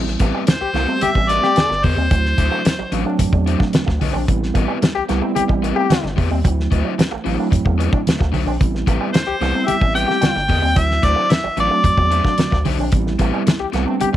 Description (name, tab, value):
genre	funk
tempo	111 BPM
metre	4/4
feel	straight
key	A dorian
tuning	A4 = 441 Hz
part	mellow tine electric piano	stabs	0.0-14.2 s	F#3 to G4	-24 LUFS	right 6 dB	medium stereo tremolo, tape echo
part	round analog bass	bass	0.0-14.2 s	G1 to E2	-20 LUFS	equal	tube saturation
part	electric guitar with an envelope filter	riff	0.1-14.2 s	F#3 to C4	-30 LUFS	right 9 dB	none
part	damped 70s drum kit	drums	0.1-14.2 s	hi-hat, kick drum, snare drum	-19 LUFS	equal	none
part	crunchy overdriven guitar	accompaniment	0.2-14.2 s	C4 to F#5	-26 LUFS	left 9 dB	none
part	congas	percussion	0.2-14.1 s	none	-24 LUFS	right 3 dB	none
part	warm harmonica	melody	0.5-2.9, 9.1-12.6 s	C5 to G5	-19 LUFS	equal	none
part	bright trombone	second line	0.6-14.1 s	G4	-22 LUFS	left 7 dB	none
room	light reverb, small room ambience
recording	1960s-style stereo with parts hard left and right, vinyl crackle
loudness	-15 LUFS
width	side -12 dB against mid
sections	0.0-14.2 A section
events	none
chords	0.0 Am9; 2.1 D9; 4.3 Am9; 6.4 D9; 8.6 Am9; 10.8 D9; 12.9 Am9